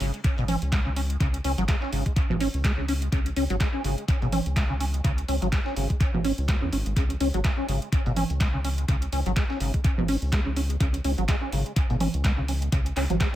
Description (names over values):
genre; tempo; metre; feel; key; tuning
acid house; 125 BPM; 4/4; swing 56% on 16ths; unclear; A4 = 436 Hz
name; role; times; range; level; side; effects
liquid acid bass; riff; 0.0-13.3 s; B2 to C#4; -29 LUFS; equal; phaser, tube saturation, wide subtle chorus, sidechain pumping, tape echo
round analog bass; bass; 0.0-13.2 s; G#1 to E2; -28 LUFS; equal; tube saturation, sidechain pumping
booming analog drum machine; drums; 0.0-13.3 s; congas, handclaps, hi-hat; -32 LUFS; right 2 dB; analog delay
dusty soul sampler-style drum kit; drums; 0.0-13.3 s; hi-hat, snare drum; -43 LUFS; equal; none
electronic kick drum; drums; 0.2-13.3 s; none; -24 LUFS; equal; overdrive
room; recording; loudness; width
light reverb, digital ambience; echo-heavy mix; -23 LUFS; side -13 dB against mid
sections
0.0-13.4 A section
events
none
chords
0.0 C#5